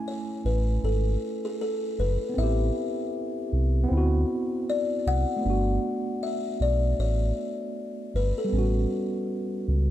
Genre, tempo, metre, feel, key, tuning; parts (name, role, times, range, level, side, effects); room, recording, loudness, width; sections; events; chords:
hip hop; 78 BPM; 4/4; swing 57% on 16ths; A4 = 440 Hz
tine electric piano; accompaniment; 0.0-9.9 s; G3 to G#5; -30 LUFS; right 1 dB; medium stereo tremolo, cassette tape
buzzing kalimba; melody; 0.1-9.1 s; G#4 to F#5; -31 LUFS; left 4 dB
sub bass with octave; bass; 0.4-9.9 s; F#1 to D2; -24 LUFS; equal
light reverb, studio reverb; -24 LUFS; side -12 dB against mid
0.0-9.9 A section
0.0 F#m9; 2.4 Am9; 3.9 D13; 5.4 Gmaj9; 8.5 A13